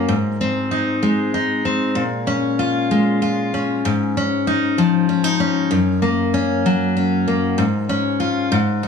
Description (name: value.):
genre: pop.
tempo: 64 BPM (dotted quarters).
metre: 6/8.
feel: straight.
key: Db major.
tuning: A4 = 440 Hz.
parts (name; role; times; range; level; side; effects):
picked steel-string acoustic guitar; solo; 0.0-8.9 s; Gb2 to F4; -16 LUFS; left 2 dB; none.
room: light reverb.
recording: studio ambience.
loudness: -16 LUFS.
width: side -6 dB against mid.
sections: 0.0-8.9 A section.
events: none.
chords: 0.1 Ab; 2.0 Bbm7; 3.8 Dbadd9/Ab; 5.7 Gb; 7.6 Db/Ab.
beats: | 0.09 1.03 | 1.96 2.90 | 3.83 4.77 | 5.71 6.64 | 7.58 8.52.